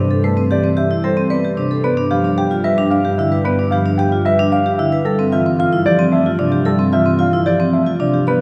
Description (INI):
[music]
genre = classical, minimalist pattern music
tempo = 112 BPM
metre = 3/4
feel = straight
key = unclear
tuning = A4 = 440 Hz
[part]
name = dark concert grand piano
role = melody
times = 0.0-8.4 s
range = A4 to G5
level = -21 LUFS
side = equal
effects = none
[part]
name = marimba with medium mallets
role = accompaniment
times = 0.0-8.4 s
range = C3 to D4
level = -21 LUFS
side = equal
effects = none
[part]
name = vibraphone with medium hard mallets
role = arpeggios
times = 0.0-8.4 s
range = C4 to D5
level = -21 LUFS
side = equal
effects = none
[part]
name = dark symphonic double bass section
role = bass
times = 0.0-8.4 s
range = G2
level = -25 LUFS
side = equal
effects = none
[sound]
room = wet cathedral reverb, RT60 6.2 s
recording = in a vast, echoing space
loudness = -16 LUFS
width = mono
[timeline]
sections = 0.0-8.4 A section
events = none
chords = 0.0 Am9/G; 1.8 G7; 5.1 Dm9/G